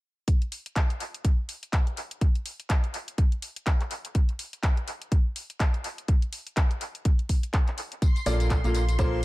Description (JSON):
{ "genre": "piano house", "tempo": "124 BPM", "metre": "4/4", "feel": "swing 58% on 16ths", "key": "Bb major", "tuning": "A4 = 440 Hz", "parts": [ { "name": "electronic kick drum", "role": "drums", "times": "0.3-9.1 s", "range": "none", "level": "-23 LUFS", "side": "equal", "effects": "none" }, { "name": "house drum kit", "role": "drums", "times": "0.3-9.1 s", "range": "handclaps, hi-hat, tambourine", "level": "-34 LUFS", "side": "equal", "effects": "analog delay" }, { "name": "string machine, violins", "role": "sustained chords", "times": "8.0-9.2 s", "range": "C6", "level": "-37 LUFS", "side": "left 1 dB", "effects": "ensemble chorus, sidechain pumping" }, { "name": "bright upright piano", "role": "riff", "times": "8.3-9.2 s", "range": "Bb2 to F5", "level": "-28 LUFS", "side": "right 1 dB", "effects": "sidechain pumping, analog delay" }, { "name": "solid FM bass", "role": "bass", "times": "8.3-9.2 s", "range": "Bb1", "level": "-25 LUFS", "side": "equal", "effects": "sidechain pumping" } ], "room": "digital ambience", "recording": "echo-heavy mix", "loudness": "-24 LUFS", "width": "side -20 dB against mid", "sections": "0.3-9.2 A section", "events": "none", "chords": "0.3 N.C.; 8.0 Bbmaj7" }